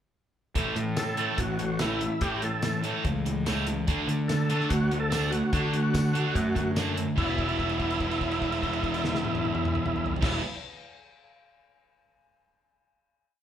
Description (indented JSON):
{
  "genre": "classic rock",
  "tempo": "145 BPM",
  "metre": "4/4",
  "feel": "straight",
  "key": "E minor",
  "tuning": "A4 = 441 Hz",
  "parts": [
    { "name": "distorted electric guitar", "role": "riff", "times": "0.6-10.4 s", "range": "E2 to D4", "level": "-33 LUFS", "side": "left 4 dB", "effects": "distortion" },
    { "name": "sludgy distorted guitar", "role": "riff", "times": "0.6-10.4 s", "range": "A2 to E4", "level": "-31 LUFS", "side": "right 5 dB", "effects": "overdrive" },
    { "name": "fuzz picked electric bass", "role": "bass", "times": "0.6-10.4 s", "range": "E1 to D3", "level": "-31 LUFS", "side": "equal", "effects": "overdrive" },
    { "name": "damped 70s drum kit", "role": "drums", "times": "0.6-10.3 s", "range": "crash cymbal, hi-hat, kick drum, snare drum, tambourine, toms", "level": "-32 LUFS", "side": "equal", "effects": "none" },
    { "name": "overdriven tonewheel organ", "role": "melody", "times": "1.0-10.4 s", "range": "E4 to A4", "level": "-31 LUFS", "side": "equal", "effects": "slow rotary speaker, chorus vibrato" }
  ],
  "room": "moderate large studio reverb, RT60 1.1 s",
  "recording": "band playing live in one room",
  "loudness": "-25 LUFS",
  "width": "side -10 dB against mid",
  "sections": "0.6-7.2 pre-chorus; 7.2-10.5 final chord",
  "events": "held note 7.2-10.2",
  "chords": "0.6 A; 3.9 D; 7.2 Em"
}